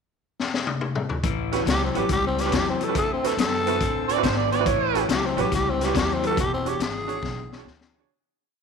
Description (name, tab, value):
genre	electric blues shuffle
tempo	140 BPM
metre	4/4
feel	swing 67% on 8ths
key	A mixolydian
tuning	A4 = 440 Hz
part	raw garage drum kit	drums	0.4-8.0 s	hi-hat, kick drum, snare drum, toms	-27 LUFS	left 3 dB	none
part	electric guitar through a small old amp	riff	1.2-8.1 s	E2 to C4	-29 LUFS	left 13 dB	spring reverb
part	upright bass	bass	1.2-8.0 s	E1 to A2	-31 LUFS	right 2 dB	none
part	bright upright piano	accompaniment	1.5-8.1 s	C4 to C#5	-29 LUFS	right 14 dB	none
part	growling tenor saxophone	melody	1.7-7.6 s	C4 to A4	-26 LUFS	equal	none
part	overdriven harmonica	second line	4.1-5.0 s	C5 to D5	-25 LUFS	right 11 dB	none
room	moderate echo chamber reverb, RT60 1.2 s, small room ambience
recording	1960s-style stereo with parts hard left and right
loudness	-21 LUFS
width	side -5 dB against mid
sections	0.0-1.2 pickup bar; 1.2-8.1 head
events	drum fill 0.4-1.2, 7.2-8.1; fade-out 6.4-8.1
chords	0.0 N.C.; 1.2 A13; 2.9 D13; 4.7 A13; 6.4 E13